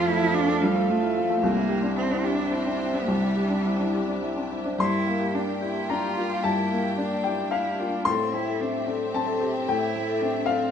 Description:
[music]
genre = neoclassical piano and strings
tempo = 109 BPM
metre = 3/4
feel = uneven beats, rubato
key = G dorian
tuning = A4 = 440 Hz
[part]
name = rich cello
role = second line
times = 0.0-10.7 s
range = G3 to F4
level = -28 LUFS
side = right 3 dB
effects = none
[part]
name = warm baby grand piano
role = accompaniment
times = 0.0-10.7 s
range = C2 to C6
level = -25 LUFS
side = left 1 dB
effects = none
[part]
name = rich studio string section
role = sustained chords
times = 0.0-10.7 s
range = Bb3 to G5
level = -35 LUFS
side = left 1 dB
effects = none
[part]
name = vibraphone with medium mallets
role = arpeggios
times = 0.2-10.5 s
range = C4 to G5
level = -31 LUFS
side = left 4 dB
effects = none
[sound]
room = wet recital hall reverb, RT60 1.5 s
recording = minimal, uncompressed stereo recording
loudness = -23 LUFS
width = side -8 dB against mid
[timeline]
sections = 0.0-4.8 A section; 4.8-10.7 B section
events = none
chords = 0.0 F; 1.4 Cadd9; 4.8 Gm7; 8.1 Am7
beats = 0.34 0.88 | 1.42 1.96 2.52 | 3.08 3.66 4.22 | 4.79 5.34 5.89 | 6.44 6.97 7.51 | 8.07 8.61 9.14 | 9.68 10.21

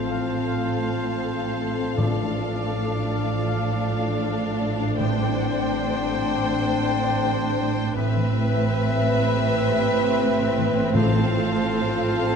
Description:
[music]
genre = cinematic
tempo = 80 BPM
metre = 4/4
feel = rubato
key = A minor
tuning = A4 = 440 Hz
[part]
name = rich studio violin section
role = melody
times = 0.0-12.4 s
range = E5 to G5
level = -31 LUFS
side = left 2 dB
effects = none
[part]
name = clear oboe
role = second line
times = 0.0-12.4 s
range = B4 to D5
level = -34 LUFS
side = right 1 dB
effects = none
[part]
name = mellow clarinet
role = second line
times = 0.0-12.4 s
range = C4 to F4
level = -31 LUFS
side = left 2 dB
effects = none
[part]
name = rich studio violin section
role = second line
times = 0.0-12.4 s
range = A4 to C5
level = -30 LUFS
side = left 2 dB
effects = none
[part]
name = warm studio viola section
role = accompaniment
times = 0.0-12.4 s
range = C4 to D4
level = -32 LUFS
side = equal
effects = none
[part]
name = warm French horn section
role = sustained chords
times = 0.0-12.4 s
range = C3 to B4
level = -30 LUFS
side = left 3 dB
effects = none
[part]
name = concert harp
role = arpeggios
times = 0.0-12.4 s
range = A2 to D6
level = -31 LUFS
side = left 8 dB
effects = none
[part]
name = dark studio double bass section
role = bass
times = 0.0-12.4 s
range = A1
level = -28 LUFS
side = right 5 dB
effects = none
[part]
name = warm studio cello section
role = bass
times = 0.0-12.4 s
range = A2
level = -28 LUFS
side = right 3 dB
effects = none
[part]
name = timpani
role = percussion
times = 2.0-6.1, 10.9-12.1 s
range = A2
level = -29 LUFS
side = left 2 dB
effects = none
[sound]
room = moderate scoring stage reverb, RT60 1.4 s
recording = dark, warm production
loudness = -20 LUFS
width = side -6 dB against mid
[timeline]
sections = 0.0-12.4 A section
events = none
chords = 0.0 F/A; 2.0 Dm/A; 5.0 Csus2/A; 8.0 Amadd9; 11.0 F/A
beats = 0.48 1.23 | 1.98 2.73 3.49 4.24 | 4.99 5.74 6.49 7.22 | 7.96 8.70 9.44 10.19 | 10.95 11.71

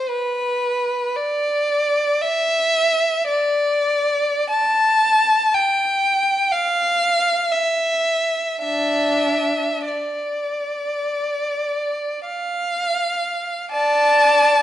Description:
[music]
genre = classical, free, expressive piece for unaccompanied violin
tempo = 35-61 BPM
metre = 4/4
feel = rubato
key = D dorian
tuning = A4 = 439 Hz
[part]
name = rich violin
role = solo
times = 0.0-14.6 s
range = D4 to A5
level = -17 LUFS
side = equal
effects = none
[sound]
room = moderate recital hall reverb, RT60 1.5 s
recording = nothing above 10.8 kHz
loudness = -17 LUFS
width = side -12 dB against mid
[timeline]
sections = 0.0-13.7 A section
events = none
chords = none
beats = | 0.09 1.16 2.22 3.28 | 4.50 5.53 6.52 7.52 | 8.63 9.87 11.11 12.26 | 13.71

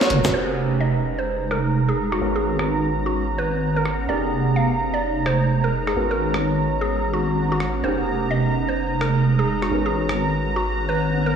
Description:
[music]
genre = UK garage, two-step garage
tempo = 128 BPM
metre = 4/4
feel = swing 62% on 16ths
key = unclear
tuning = A4 = 435 Hz
[part]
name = dark baby grand piano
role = stabs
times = 0.0-11.4 s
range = Cb4 to Db5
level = -28 LUFS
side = equal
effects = wide subtle chorus, diffuse ambient delay
[part]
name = breakbeat sampler-style drum kit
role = drums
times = 0.0-10.2 s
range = crash cymbal, hi-hat, rim click, snare drum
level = -28 LUFS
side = equal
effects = low-pass filter on hats, low-pass filter on snare, low-pass filter on perc, low-pass filter on cymbals, low-pass filter on room
[part]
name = granular cloud pad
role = texture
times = 0.0-11.4 s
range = Ab3 to Bb5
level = -27 LUFS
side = right 1 dB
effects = built-in reverb, analog chorus
[part]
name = deep soft wobble bass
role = bass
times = 0.1-11.4 s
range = Eb1 to Ab1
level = -23 LUFS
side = right 1 dB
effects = chorus
[part]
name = mallet-like synth pluck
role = melody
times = 0.3-11.4 s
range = Gb4 to F5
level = -27 LUFS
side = equal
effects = chorus, analog delay
[part]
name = warm analog pad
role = sustained chords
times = 0.3-11.4 s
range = Bb5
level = -29 LUFS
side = right 4 dB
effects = chorus, tremolo
[sound]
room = wet lush hall reverb, RT60 1.8 s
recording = dreamy mix soaked in reverb, studio ambience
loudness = -19 LUFS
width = side -7 dB against mid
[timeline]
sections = 0.3-11.4 A section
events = drum fill 0.0-0.3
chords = 0.3 Fm11; 2.2 Abm11; 4.1 Fm11; 6.0 Abm11; 7.8 Fm11; 9.7 Abm11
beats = | 0.34 0.81 1.28 1.75 | 2.21 2.68 3.15 3.62 | 4.09 4.56 5.03 5.50 | 5.96 6.43 6.90 7.37 | 7.84 8.31 8.78 9.24 | 9.71 10.18 10.65 11.12

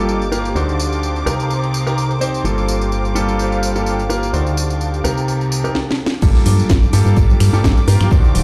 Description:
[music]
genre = piano house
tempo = 127 BPM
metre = 4/4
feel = swing 55% on 16ths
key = G minor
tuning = A4 = 442 Hz
[part]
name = dark studio violin section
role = sustained chords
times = 0.0-8.4 s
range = D6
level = -32 LUFS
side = equal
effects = vintage 12-bit sampler grit, sidechain pumping
[part]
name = clear grand piano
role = riff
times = 0.0-8.4 s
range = G2 to C5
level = -22 LUFS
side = equal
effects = sidechain pumping, digital delay
[part]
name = organ-like FM bass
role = bass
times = 0.0-8.4 s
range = D1 to G2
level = -21 LUFS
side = equal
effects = tube saturation, sidechain pumping
[part]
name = granular cloud pad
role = texture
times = 0.0-8.4 s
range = G4 to F5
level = -29 LUFS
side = equal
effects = built-in reverb, sidechain pumping
[part]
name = house drum kit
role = drums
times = 0.1-8.4 s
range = crash cymbal, finger snaps, hi-hat, snare drum, tambourine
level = -27 LUFS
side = equal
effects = none
[part]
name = electronic kick drum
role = drums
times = 6.2-8.2 s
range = none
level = -16 LUFS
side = equal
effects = none
[part]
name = jazz brush drum kit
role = drums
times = 6.2-8.4 s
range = hi-hat, shaker, snare drum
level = -39 LUFS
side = equal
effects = none
[part]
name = tambourine and congas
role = percussion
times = 6.2-8.4 s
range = none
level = -30 LUFS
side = equal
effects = none
[sound]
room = light reverb, small room reverb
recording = played on a big sound system in a bare room, large studio reverb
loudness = -16 LUFS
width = mono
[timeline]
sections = 0.0-6.2 A section; 6.2-8.4 B section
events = filter sweep on drum 0.0-6.2; drum fill 5.8-6.2; drop 6.2-8.4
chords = 0.0 Gm9; 0.6 D7b9; 1.3 Cm7; 2.4 Gm9; 4.3 D7b9; 5.0 Cm7; 6.2 Gm9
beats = 0.08 | 0.56 1.03 1.50 1.97 | 2.44 2.92 3.39 3.86 | 4.33 4.81 5.28 5.75 | 6.22 6.70 7.17 7.64 | 8.11

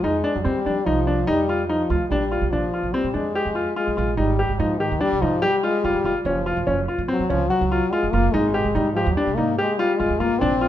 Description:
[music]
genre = contemporary instrumental, chamber music in an uneven meter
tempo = 145 BPM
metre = 5/4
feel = straight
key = Ab lydian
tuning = A4 = 439 Hz
[part]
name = clear French horn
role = second line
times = 0.0-10.7 s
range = Eb3 to C4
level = -23 LUFS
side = left 3 dB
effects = none
[part]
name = clear baby grand piano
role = arpeggios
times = 0.0-10.7 s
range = C4 to G4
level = -22 LUFS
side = left 1 dB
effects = none
[part]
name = upright bass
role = bass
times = 0.0-10.7 s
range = Gb1 to F3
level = -26 LUFS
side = right 3 dB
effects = none
[sound]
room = moderate recital hall reverb, RT60 1.5 s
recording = minimal, uncompressed stereo recording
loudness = -19 LUFS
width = side -12 dB against mid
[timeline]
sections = 0.0-2.1 A section; 2.1-10.7 B section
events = none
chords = 0.0 F5; 2.1 Bb7; 4.2 Abmaj7(no3); 6.3 Gb5; 8.3 Abmaj7(no3)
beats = | 0.03 0.45 0.87 1.28 1.70 | 2.11 2.53 2.94 3.36 3.78 | 4.19 4.61 5.02 5.44 5.85 | 6.27 6.68 7.09 7.51 7.92 | 8.34 8.75 9.17 9.58 10.00 | 10.41

